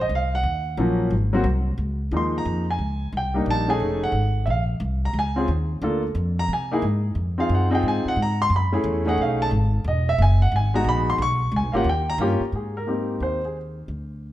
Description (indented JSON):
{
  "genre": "jazz piano trio",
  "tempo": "178 BPM",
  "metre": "4/4",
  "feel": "swing 65% on 8ths",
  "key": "Db major",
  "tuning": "A4 = 438 Hz",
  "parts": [
    { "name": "warm baby grand piano", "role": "melody", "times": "0.0-13.6 s", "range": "F3 to Db6", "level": "-23 LUFS", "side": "equal", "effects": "none" },
    { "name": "upright bass", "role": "bass", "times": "0.0-14.3 s", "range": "E1 to C3", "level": "-23 LUFS", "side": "equal", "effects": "none" }
  ],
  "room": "moderate large studio reverb, RT60 1.3 s",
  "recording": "none",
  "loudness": "-20 LUFS",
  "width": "side -14 dB against mid",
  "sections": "0.0-1.8 A section; 1.8-12.5 A section; 12.5-14.3 B section",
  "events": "grand piano solo 0.0-12.5",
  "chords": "0.4 Ebm7; 1.1 Ab7; 1.8 Db6; 3.1 Cm7; 3.8 F7alt; 4.5 Bbm7; 5.8 Dm; 6.5 C(#5, no3); 7.2 Fm7; 8.5 Gbm7; 9.2 Cb13; 9.8 Emaj9; 11.2 Cbsus2; 11.9 Eb7; 12.5 Abmaj7"
}